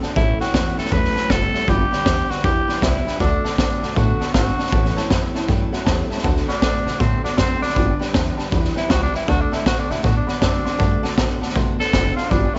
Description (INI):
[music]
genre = rockabilly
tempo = 158 BPM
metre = 4/4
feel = swing 64% on 8ths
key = D mixolydian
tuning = A4 = 439 Hz
[part]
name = dark upright piano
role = accompaniment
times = 0.0-12.6 s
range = C#5 to D6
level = -35 LUFS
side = equal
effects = none
[part]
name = picked steel-string acoustic guitar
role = accompaniment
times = 0.0-12.6 s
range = A2 to B4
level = -32 LUFS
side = equal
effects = none
[part]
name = electric guitar through a small old amp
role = riff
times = 0.0-12.6 s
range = G2 to C4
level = -31 LUFS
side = equal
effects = phaser
[part]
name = upright bass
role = bass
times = 0.0-12.6 s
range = F#1 to C3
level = -26 LUFS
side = equal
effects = none
[part]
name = raw garage drum kit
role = drums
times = 0.0-12.6 s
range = hi-hat, kick drum, snare drum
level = -23 LUFS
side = equal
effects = none
[part]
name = raspy tenor saxophone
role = melody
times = 0.2-12.6 s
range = A3 to B4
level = -26 LUFS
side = equal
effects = slapback echo
[sound]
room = small room ambience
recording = nothing above 7.8 kHz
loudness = -20 LUFS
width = mono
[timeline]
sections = 0.0-6.2 A section; 6.2-12.6 B section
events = tenor saxophone solo 6.2-12.6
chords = 0.2 A; 1.7 G; 3.2 D; 4.7 A; 6.2 D; 7.8 G; 9.3 D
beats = | 0.16 0.54 0.92 1.30 | 1.68 2.06 2.44 2.82 | 3.20 3.58 3.96 4.34 | 4.72 5.10 5.48 5.86 | 6.24 6.62 7.00 7.38 | 7.76 8.14 8.52 8.90 | 9.28 9.66 10.04 10.42 | 10.80 11.18 11.56 11.94 | 12.31